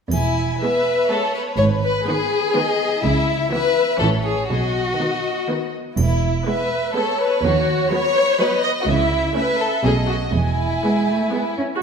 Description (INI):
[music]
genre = cinematic, playful, whimsical film cue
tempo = 123 BPM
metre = 3/4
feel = straight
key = E major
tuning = A4 = 440 Hz
[part]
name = rich chamber violin section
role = melody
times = 0.1-11.6 s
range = B4 to G#5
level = -25 LUFS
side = left 1 dB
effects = none
[part]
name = rich chamber violin section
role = second line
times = 0.1-11.5 s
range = E4 to D#5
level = -20 LUFS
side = left 2 dB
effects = none
[part]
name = rich chamber double bass section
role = bass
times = 0.1-10.7 s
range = E1 to D#2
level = -23 LUFS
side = right 4 dB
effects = none
[part]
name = warm chamber cello section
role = bass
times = 0.1-11.7 s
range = D#2 to C#4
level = -24 LUFS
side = right 1 dB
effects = none
[part]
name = triangle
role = percussion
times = 0.1-1.1, 6.0-6.9 s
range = none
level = -36 LUFS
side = equal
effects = none
[part]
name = rich chamber viola section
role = accompaniment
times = 0.6-11.8 s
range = D#3 to F#4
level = -26 LUFS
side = right 1 dB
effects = none
[sound]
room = wet scoring stage reverb, RT60 1.4 s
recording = none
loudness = -17 LUFS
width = side -6 dB against mid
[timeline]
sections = 0.1-11.8 A section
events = none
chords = 0.1 E; 1.6 G#m; 3.0 C#m7; 4.0 A; 4.5 B; 6.0 E; 7.4 B/D#; 8.9 A/C#; 9.8 B9; 10.3 E